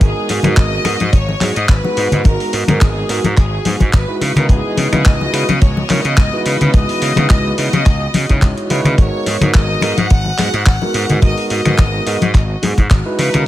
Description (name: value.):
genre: nu-disco, nu disco.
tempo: 107 BPM.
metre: 4/4.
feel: swing 54% on 16ths.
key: G# minor.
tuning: A4 = 439 Hz.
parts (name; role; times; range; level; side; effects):
clear studio violin section; melody; 0.0-13.5 s; G#4 to F#5; -22 LUFS; left 2 dB; none.
overdriven tine electric piano; accompaniment; 0.0-13.4 s; G#3 to C#5; -21 LUFS; right 1 dB; none.
muted studio string section; sustained chords; 0.0-13.5 s; E3 to D#5; -27 LUFS; right 2 dB; sidechain pumping.
gritty slap bass; bass; 0.0-13.4 s; G#1 to C#3; -18 LUFS; equal; overdrive.
dusty soul sampler-style drum kit; drums; 0.0-13.4 s; finger snaps, handclaps, hi-hat; -22 LUFS; equal; small room reverb.
kick drum; drums; 0.0-13.0 s; none; -12 LUFS; equal; small room reverb.
congas; percussion; 0.3-13.4 s; none; -17 LUFS; left 3 dB; none.
room: little or no reverb.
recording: none.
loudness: -12 LUFS.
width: side -14 dB against mid.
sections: 0.0-13.5 A section.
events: none.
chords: 0.0 G#m9; 4.2 C#m11; 9.0 G#m9.